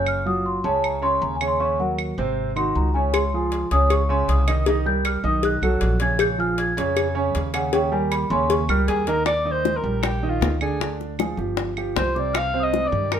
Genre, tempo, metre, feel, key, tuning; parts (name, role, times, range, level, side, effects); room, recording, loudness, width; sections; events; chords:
Afro-Cuban jazz; 156 BPM; 4/4; straight; Eb major from 9.3 s; A4 = 440 Hz
large celesta; second line; 0.0-13.2 s; F5 to Ab6; -26 LUFS; left 2 dB
warm grand piano; accompaniment; 0.0-13.2 s; C3 to Eb5; -24 LUFS; right 3 dB
upright bass; bass; 0.0-13.2 s; Gb1 to G2; -25 LUFS; equal
claves; percussion; 0.1-13.2 s; -32 LUFS; right 6 dB
cowbell and bongos; percussion; 3.1-13.2 s; -26 LUFS; left 5 dB
breathy alto saxophone; melody; 8.9-13.2 s; F4 to F5; -24 LUFS; equal
moderate studio reverb, RT60 0.8 s; minimal, uncompressed stereo recording; -19 LUFS; side -9 dB against mid
0.0-9.3 A section; 9.3-13.2 B section
celesta solo 0.0-9.3
0.1 Gb5; 1.6 Ebm7; 2.4 Ab7; 3.1 Dbmaj9; 4.7 Cm7; 5.4 B9; 6.2 Bbm7; 7.7 Eb7; 9.3 Ebmaj7; 10.8 Ddim; 11.6 G7sus4; 12.3 Cm